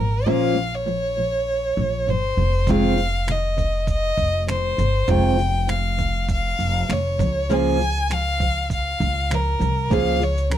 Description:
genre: acoustic pop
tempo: 100 BPM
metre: 4/4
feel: swing 55% on 16ths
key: unclear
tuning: A4 = 440 Hz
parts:
  - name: warm violin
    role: melody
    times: 0.0-10.6 s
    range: Bb4 to Ab5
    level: -24 LUFS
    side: left 1 dB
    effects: none
  - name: fingerpicked steel-string acoustic guitar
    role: accompaniment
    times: 0.0-10.6 s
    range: F2 to Ab4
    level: -23 LUFS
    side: right 1 dB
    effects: none
  - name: upright bass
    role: bass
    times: 0.0-10.6 s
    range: F1 to Db2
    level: -23 LUFS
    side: equal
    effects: none
  - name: boom bap sampler-style drum kit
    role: drums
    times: 2.7-10.6 s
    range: finger snaps, kick drum, shaker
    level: -26 LUFS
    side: right 2 dB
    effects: none
room: little or no reverb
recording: close, detailed microphones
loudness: -19 LUFS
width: side -11 dB against mid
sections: 0.0-10.6 A section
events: none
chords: 0.0 Bbm; 2.4 Fm7; 7.2 Db6

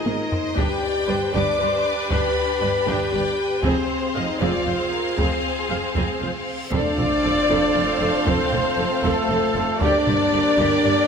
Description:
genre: cinematic, epic orchestral film score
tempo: 78 BPM (dotted quarters)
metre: 6/8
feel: straight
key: unclear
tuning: A4 = 442 Hz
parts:
  - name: clear studio violin section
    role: melody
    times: 0.0-11.1 s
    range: C5 to D6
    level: -30 LUFS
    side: left 2 dB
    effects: none
  - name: warm symphonic violin section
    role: second line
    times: 0.0-11.1 s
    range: G4 to D5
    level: -29 LUFS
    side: left 3 dB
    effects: none
  - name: warm symphonic viola section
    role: accompaniment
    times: 0.0-11.1 s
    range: C4 to F5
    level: -29 LUFS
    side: right 2 dB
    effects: none
  - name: clear symphonic string section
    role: sustained chords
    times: 0.0-11.1 s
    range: C4 to F5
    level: -27 LUFS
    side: right 1 dB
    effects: none
  - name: mellow French horn section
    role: sustained chords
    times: 0.0-11.1 s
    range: A3 to D5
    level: -24 LUFS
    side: left 3 dB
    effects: none
  - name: rich studio double bass section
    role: bass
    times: 0.1-10.9 s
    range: F1 to Ab1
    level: -31 LUFS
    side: right 5 dB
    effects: none
  - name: warm symphonic cello section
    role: bass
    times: 0.1-10.9 s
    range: F2 to Ab2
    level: -30 LUFS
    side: right 4 dB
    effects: none
  - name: taiko ensemble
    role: drums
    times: 0.1-11.1 s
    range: none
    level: -29 LUFS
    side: right 1 dB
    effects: none
  - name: reverse cymbal and sub drop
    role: sound effects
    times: 6.3-8.3 s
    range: none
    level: -35 LUFS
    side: equal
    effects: none
  - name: mellow hollow silver concert flute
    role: second line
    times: 6.7-11.1 s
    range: A4 to D5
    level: -29 LUFS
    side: equal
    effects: none
  - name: clear trombone section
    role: sustained chords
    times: 6.7-11.1 s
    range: D3 to Bb3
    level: -33 LUFS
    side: right 5 dB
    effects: none
  - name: dark trumpet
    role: stabs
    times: 6.7-11.1 s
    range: A4 to D5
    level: -25 LUFS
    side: right 1 dB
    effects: none
room: moderate scoring stage reverb, RT60 2.1 s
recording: none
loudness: -19 LUFS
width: side -6 dB against mid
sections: 0.0-6.7 A section; 6.7-11.1 B section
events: drum fill 0.0-0.6; reverse cymbal 6.3-6.7; impact 6.7-8.3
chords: 0.0 Abadd9; 0.6 G; 3.6 Fm; 6.7 F; 9.8 Gm

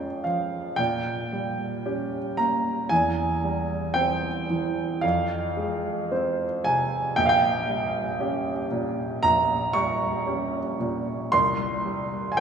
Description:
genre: classical, romantic nocturne for solo piano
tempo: 57 BPM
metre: 4/4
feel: rubato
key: unclear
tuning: A4 = 440 Hz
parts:
  - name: clear grand piano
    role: solo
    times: 0.0-12.4 s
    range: Bb1 to Db6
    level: -23 LUFS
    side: right 2 dB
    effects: none
room: wet cathedral reverb, RT60 5.1 s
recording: recorded in a church or concert hall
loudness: -23 LUFS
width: side -7 dB against mid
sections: 0.0-12.4 A section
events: none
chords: 0.0 Db/F; 0.8 Gdim/Bb; 2.9 C/E; 5.0 Fm; 7.2 Gdim/Bb; 11.3 C5

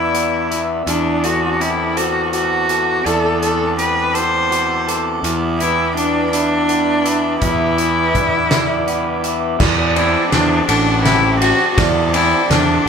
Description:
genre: post-rock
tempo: 55 BPM (dotted quarters)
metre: 6/8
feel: straight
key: unclear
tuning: A4 = 441 Hz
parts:
  - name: bright cello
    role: melody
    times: 0.0-12.8 s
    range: D4 to C5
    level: -17 LUFS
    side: left 1 dB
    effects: none
  - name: airy breathy pad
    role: sustained chords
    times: 0.0-12.9 s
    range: C4 to E6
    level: -24 LUFS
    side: right 3 dB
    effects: chorus
  - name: electric guitar through a small old amp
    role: arpeggios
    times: 0.0-12.9 s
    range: E2 to A4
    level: -24 LUFS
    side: left 4 dB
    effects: spring reverb
  - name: vibraphone with medium mallets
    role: arpeggios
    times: 0.0-12.9 s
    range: A4 to E5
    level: -26 LUFS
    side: right 8 dB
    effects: none
  - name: fuzz fingered electric bass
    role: bass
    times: 0.0-12.9 s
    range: A1 to E2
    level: -20 LUFS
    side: equal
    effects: overdrive
  - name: loose indie drum kit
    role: drums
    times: 0.1-12.7 s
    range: crash cymbal, hi-hat, kick drum, ride cymbal, snare drum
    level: -20 LUFS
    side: equal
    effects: none
room: moderate studio ambience, RT60 0.5 s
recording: band playing live in one room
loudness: -14 LUFS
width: side -6 dB against mid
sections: 0.0-9.6 A section; 9.6-12.9 B section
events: build-up 9.6-12.9; drum fill 9.6-12.9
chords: 0.0 E7(no3); 0.9 D7/E; 5.2 Em7; 9.6 D7

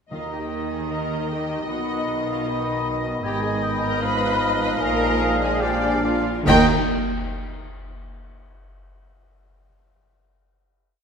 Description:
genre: classical, dramatic, fast romantic movement for symphony orchestra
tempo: 136-156 BPM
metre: 4/4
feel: straight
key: Eb major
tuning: A4 = 439 Hz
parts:
  - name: warm symphonic violin section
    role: melody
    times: 0.1-6.7 s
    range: D5 to G5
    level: -31 LUFS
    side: left 4 dB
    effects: none
  - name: bright clarinet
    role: second line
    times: 0.1-6.7 s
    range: D5 to Eb5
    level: -33 LUFS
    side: left 3 dB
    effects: none
  - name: clear oboe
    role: second line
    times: 0.1-6.7 s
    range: Eb5 to Ab5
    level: -34 LUFS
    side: right 1 dB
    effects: none
  - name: mellow hollow large flute ensemble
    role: second line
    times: 0.1-6.7 s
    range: Ab5 to B5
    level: -31 LUFS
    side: left 2 dB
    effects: none
  - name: rich symphonic violin section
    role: second line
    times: 0.1-6.7 s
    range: D#5 to Cb6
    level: -34 LUFS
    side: left 2 dB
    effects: none
  - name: clear bassoon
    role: accompaniment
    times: 0.1-6.7 s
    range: Eb3 to F3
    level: -31 LUFS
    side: right 2 dB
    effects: none
  - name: warm symphonic viola section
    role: accompaniment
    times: 0.1-6.7 s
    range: D#4 to Cb5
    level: -30 LUFS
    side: equal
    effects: none
  - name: dark French horn section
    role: sustained chords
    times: 0.1-6.7 s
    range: Ab3 to Eb4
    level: -29 LUFS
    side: left 3 dB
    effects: none
  - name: clear trumpet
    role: stabs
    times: 0.1-6.7 s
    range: Eb5 to G5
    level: -31 LUFS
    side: right 3 dB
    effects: none
  - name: rich symphonic cello section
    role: bass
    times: 0.1-6.7 s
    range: Ab2 to Eb3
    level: -28 LUFS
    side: right 2 dB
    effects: none
  - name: rich symphonic double bass section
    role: bass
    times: 0.1-6.7 s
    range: Ab1 to Eb2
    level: -29 LUFS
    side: right 3 dB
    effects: none
  - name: timpani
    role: percussion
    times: 0.1-0.7, 6.5-6.7 s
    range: Eb3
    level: -26 LUFS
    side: equal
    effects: none
  - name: cymbal swell, clash cymbals and concert bass drum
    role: percussion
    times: 3.2-7.3 s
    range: none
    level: -31 LUFS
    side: left 1 dB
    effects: none
room: wet scoring stage reverb, RT60 2.1 s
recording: minimal, uncompressed stereo recording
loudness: -20 LUFS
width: side -6 dB against mid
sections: 0.1-6.5 A section; 6.5-8.2 final chord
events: slowing down 2.5-6.5; band accent 6.5-6.9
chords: 0.1 Eb; 1.7 B; 3.2 Abm; 4.0 Fm7b5/Ab; 4.8 Bb7sus4; 5.6 Bb7; 6.5 Eb

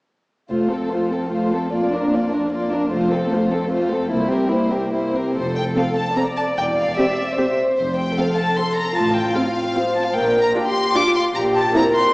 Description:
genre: quick classical-period movement for string orchestra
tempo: 150 BPM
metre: 3/4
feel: rubato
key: F major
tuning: A4 = 440 Hz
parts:
  - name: warm chamber violin section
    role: melody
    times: 0.5-12.1 s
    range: A4 to D6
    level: -23 LUFS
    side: left 1 dB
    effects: none
  - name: dark chamber violin section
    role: second line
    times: 0.5-12.1 s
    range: D4 to D5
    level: -21 LUFS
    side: equal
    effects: none
  - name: dark chamber viola section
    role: accompaniment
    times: 0.5-11.8 s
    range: A3 to A4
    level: -23 LUFS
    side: equal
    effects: none
  - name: warm chamber cello section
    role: bass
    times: 0.5-11.7 s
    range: C2 to Bb2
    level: -28 LUFS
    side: equal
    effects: none
  - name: warm chamber double bass section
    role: bass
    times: 0.5-0.9, 2.9-11.7 s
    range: E1 to C2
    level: -32 LUFS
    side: equal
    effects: none
room: wet concert hall reverb, RT60 2.1 s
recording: heard from further back in the room, small speaker sound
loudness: -17 LUFS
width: side -24 dB against mid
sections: 0.5-5.4 A section; 5.4-12.1 B section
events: none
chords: 0.5 F; 1.7 Bb/F; 2.9 F; 4.1 C7; 5.4 F; 6.6 C/E; 7.8 F; 9.0 F/A; 10.2 Gm7/Bb; 11.3 C7(no3)/Bb

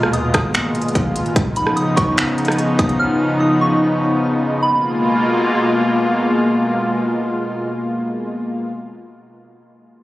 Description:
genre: hip hop, atmospheric cloud-rap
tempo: 147 BPM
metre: 4/4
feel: half-time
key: G# dorian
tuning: A4 = 440 Hz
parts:
  - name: soft synth bell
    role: melody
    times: 0.0-5.8 s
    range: B5 to E#6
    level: -22 LUFS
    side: right 1 dB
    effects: chorus, digital delay
  - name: warm analog pad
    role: sustained chords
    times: 0.0-8.7 s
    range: A#2 to E#4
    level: -17 LUFS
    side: equal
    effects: chorus, sidechain pumping
  - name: long sustained 808-style bass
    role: bass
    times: 0.0-1.3 s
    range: G#1 to D#2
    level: -28 LUFS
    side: equal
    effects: none
  - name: trap drum kit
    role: drums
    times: 0.0-3.0 s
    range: finger snaps, hi-hat, kick drum, rim click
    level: -19 LUFS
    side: equal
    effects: none
room: little or no reverb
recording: recorded on a phone in the room, club reverb, compression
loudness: -15 LUFS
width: side -16 dB against mid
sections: 0.0-4.6 A section; 4.6-7.9 B section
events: none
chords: 0.0 G#m69; 1.4 C#9; 4.6 G#m69

